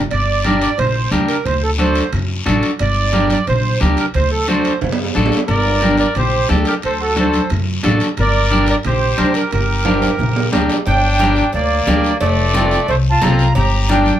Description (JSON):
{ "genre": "latin, cumbia", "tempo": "179 BPM", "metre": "4/4", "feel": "straight", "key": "G harmonic minor, G minor from 10.9 s", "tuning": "A4 = 440 Hz", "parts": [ { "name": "upright bass", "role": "bass", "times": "0.0-14.1 s", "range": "F1 to F#2", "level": "-18 LUFS", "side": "equal", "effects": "none" }, { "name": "congas", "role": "percussion", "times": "0.0-14.2 s", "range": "none", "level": "-23 LUFS", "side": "right 2 dB", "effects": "none" }, { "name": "accordion", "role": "melody", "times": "0.1-14.2 s", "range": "A4 to Bb5", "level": "-19 LUFS", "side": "right 4 dB", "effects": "light tremolo tuning" }, { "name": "guiro", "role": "percussion", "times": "0.1-14.2 s", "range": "none", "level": "-28 LUFS", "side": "left 6 dB", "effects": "none" }, { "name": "timbales and cowbell", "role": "percussion", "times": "0.1-14.1 s", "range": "none", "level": "-26 LUFS", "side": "right 4 dB", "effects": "none" }, { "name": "electric guitar at the edge of break-up", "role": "accompaniment", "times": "0.5-14.1 s", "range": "C4 to Bb4", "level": "-18 LUFS", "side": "left 2 dB", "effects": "none" }, { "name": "clear trumpet", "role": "second line", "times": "5.5-14.2 s", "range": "A3 to Bb4", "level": "-22 LUFS", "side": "left 5 dB", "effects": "slapback echo" } ], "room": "moderate small room reverb, RT60 0.5 s", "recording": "none", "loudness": "-13 LUFS", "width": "side -11 dB against mid", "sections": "0.1-10.9 A section; 10.9-14.2 B section", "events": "drum fill 4.8-5.5, 9.9-10.9", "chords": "0.1 Gm; 1.5 D7; 2.8 Gm; 4.1 D7; 5.5 Gm; 6.8 D7; 8.2 Gm; 12.2 F; 13.6 Gm" }